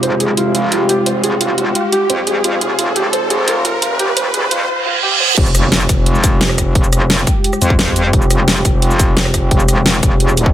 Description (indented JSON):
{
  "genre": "dark technical drum and bass",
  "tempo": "174 BPM",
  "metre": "4/4",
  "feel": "straight",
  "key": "F minor",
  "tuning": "A4 = 437 Hz",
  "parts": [
    { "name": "dark analog pad", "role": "sustained chords", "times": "0.0-10.5 s", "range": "Ab3 to C5", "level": "-20 LUFS", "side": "equal", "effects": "chorus, sidechain pumping" },
    { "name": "felt-muted upright piano", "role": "arpeggios", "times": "0.0-5.3 s", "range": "F4 to C5", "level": "-19 LUFS", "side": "right 2 dB", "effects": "sidechain pumping, tape echo" },
    { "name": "metallic wobble bass", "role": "bass", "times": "0.0-10.5 s", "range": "F1 to F2", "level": "-17 LUFS", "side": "equal", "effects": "chorus, tube saturation, sidechain pumping" },
    { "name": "dubstep drum kit", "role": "drums", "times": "0.0-10.4 s", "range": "crash cymbal, hi-hat, rim click, shaker, snare drum", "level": "-16 LUFS", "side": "equal", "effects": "none" },
    { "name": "riser, reverse cymbal and impact", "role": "sound effects", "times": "0.0-6.8 s", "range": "none", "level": "-18 LUFS", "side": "right 2 dB", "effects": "none" },
    { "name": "electronic kick drum", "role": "drums", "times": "5.4-10.5 s", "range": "none", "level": "-15 LUFS", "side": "equal", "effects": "none" }
  ],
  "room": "light reverb",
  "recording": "high-pass filter",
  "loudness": "-12 LUFS",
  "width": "side -12 dB against mid",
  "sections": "0.0-5.4 A section; 5.4-10.5 B section",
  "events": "build-up 0.0-5.4; riser 0.0-4.7; filter sweep on felt piano 0.0-5.4; filter sweep 0.0-5.4; reverse cymbal 4.7-5.4; drop 5.4-10.5; impact 5.4-6.8",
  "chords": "0.0 Fmadd9"
}